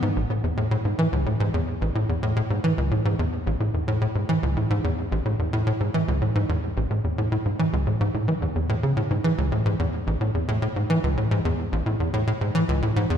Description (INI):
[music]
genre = ambient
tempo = 109 BPM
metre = 4/4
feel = straight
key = A major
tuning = A4 = 440 Hz
[part]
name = tight sequencer bass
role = solo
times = 0.0-13.2 s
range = A1 to E3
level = -22 LUFS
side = equal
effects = analog chorus, tape echo
[sound]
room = wet concert hall reverb, RT60 2.1 s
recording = dark, warm production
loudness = -22 LUFS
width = side -9 dB against mid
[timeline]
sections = 0.2-13.2 A section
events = none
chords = none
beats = | 0.16 0.71 1.26 1.81 | 2.36 2.91 3.46 4.01 | 4.57 5.12 5.67 6.22 | 6.77 7.32 7.87 8.42 | 8.97 9.52 10.07 10.62 | 11.17 11.72 12.27 12.82